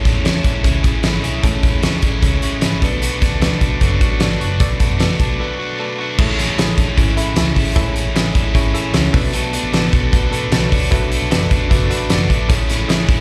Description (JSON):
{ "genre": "jangly indie pop", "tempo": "152 BPM", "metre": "4/4", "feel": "straight", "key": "A major", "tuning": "A4 = 441 Hz", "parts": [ { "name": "overdriven electric guitar", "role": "accompaniment", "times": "0.0-13.2 s", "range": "A2 to F#4", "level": "-25 LUFS", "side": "equal", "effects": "plate reverb, slapback echo" }, { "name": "reed electric piano", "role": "accompaniment", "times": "0.0-13.2 s", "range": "E4 to B5", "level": "-29 LUFS", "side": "equal", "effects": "plate reverb, slapback echo" }, { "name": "twelve-string electric guitar", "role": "arpeggios", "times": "0.0-13.2 s", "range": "B2 to A4", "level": "-28 LUFS", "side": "equal", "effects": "plate reverb" }, { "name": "vintage muted fingered electric bass", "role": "bass", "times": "0.0-13.2 s", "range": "E1 to F#2", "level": "-23 LUFS", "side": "equal", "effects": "none" }, { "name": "loose indie drum kit", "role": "drums", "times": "0.1-13.2 s", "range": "crash cymbal, hi-hat, kick drum, snare drum", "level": "-19 LUFS", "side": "equal", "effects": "none" } ], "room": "light reverb", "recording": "live gig heard through the venue's PA, club reverb", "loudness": "-16 LUFS", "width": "mono", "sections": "0.0-6.2 A section; 6.2-13.2 B section", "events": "break 5.4-6.2; reed electric piano fill 8.2-9.3, 11.7-12.5", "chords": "0.0 Amaj7; 2.8 Bm7; 6.2 Amaj7; 9.1 Bm7; 12.5 Amaj7" }